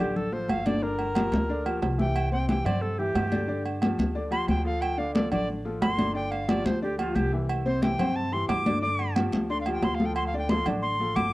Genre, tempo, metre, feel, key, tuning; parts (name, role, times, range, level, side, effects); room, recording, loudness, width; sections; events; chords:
latin, salsa; 180 BPM; 4/4; straight; A4 = 440 Hz
bright reedy alto recorder; melody; 0.0-11.3 s; F4 to D6; -30 LUFS; equal; cassette tape
clear upright piano; accompaniment; 0.0-11.3 s; C3 to D5; -31 LUFS; left 2 dB; cassette tape
upright bass; bass; 0.0-11.3 s; G1 to G2; -32 LUFS; equal
congas; percussion; 0.0-11.3 s; -28 LUFS; left 1 dB
agogo bells and timbales; percussion; 0.5-11.3 s; -34 LUFS; right 5 dB
light reverb, small room ambience; home recording on cassette; -24 LUFS; side -18 dB against mid
0.0-11.3 A section
recorder solo 0.0-11.3
0.0 Dm; 0.8 Gm7; 2.2 C; 3.5 G5; 4.8 Dm7; 6.2 G5; 7.5 C; 8.8 G5; 10.2 Dm7